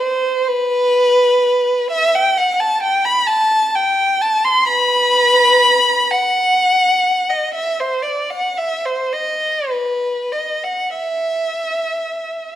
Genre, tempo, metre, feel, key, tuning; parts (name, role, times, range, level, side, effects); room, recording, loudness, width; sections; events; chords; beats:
classical, free, expressive piece for unaccompanied violin; 29-44 BPM (dotted quarters); 6/8; rubato; A4 = 438 Hz
rich violin; solo; 0.0-12.6 s; B4 to C6; -14 LUFS; equal
moderate recital hall reverb, RT60 1.6 s; -14 LUFS; side -12 dB against mid
0.0-12.6 A section
0.48 | 1.92 3.30 | 4.69 6.11 | 7.55 9.12 | 10.97